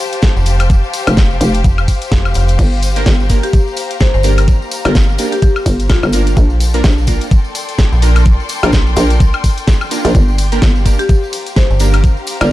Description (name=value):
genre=bass house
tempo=127 BPM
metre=4/4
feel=swing 58% on 16ths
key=G minor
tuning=A4 = 440 Hz
part: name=rich studio string section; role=texture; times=0.0-12.5 s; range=G4 to C6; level=-24 LUFS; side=left 4 dB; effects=sidechain pumping
part: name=big-room dance drum kit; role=drums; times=0.1-12.5 s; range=crash cymbal, hi-hat, ride cymbal, snare drum, woodblock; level=-20 LUFS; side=left 1 dB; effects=none
part: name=tambourine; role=percussion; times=0.1-12.5 s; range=none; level=-30 LUFS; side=left 3 dB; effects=none
part: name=electronic kick drum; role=drums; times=0.2-12.1 s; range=none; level=-11 LUFS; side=equal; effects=none
part: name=metallic FM bass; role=bass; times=0.4-4.6, 7.9-8.4, 11.7-12.2 s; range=F1 to Bb1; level=-12 LUFS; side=equal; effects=overdrive, sidechain pumping
part: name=hollow knocking FM bass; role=bass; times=1.1-12.5 s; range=F1 to Bb1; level=-14 LUFS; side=equal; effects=tube saturation, sidechain pumping
part: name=orchestra-hit-like synth stab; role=stabs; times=3.0-12.5 s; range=Bb3 to Bb4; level=-21 LUFS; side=right 3 dB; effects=built-in reverb, sidechain pumping, digital delay
part: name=marimba with hard mallets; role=melody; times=3.4-6.4, 11.0-12.5 s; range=F4 to D5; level=-21 LUFS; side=left 3 dB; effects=digital delay
room=little or no reverb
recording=dark, warm production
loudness=-10 LUFS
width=side -16 dB against mid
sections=0.0-12.5 A section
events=none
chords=0.0 F; 2.6 Gm; 6.4 Bb; 10.1 Gm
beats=0.23 | 0.70 1.17 1.64 2.12 | 2.59 3.06 3.53 4.01 | 4.48 4.95 5.42 5.90 | 6.37 6.84 7.31 7.79 | 8.26 8.73 9.20 9.68 | 10.15 10.62 11.09 11.56 | 12.04 12.51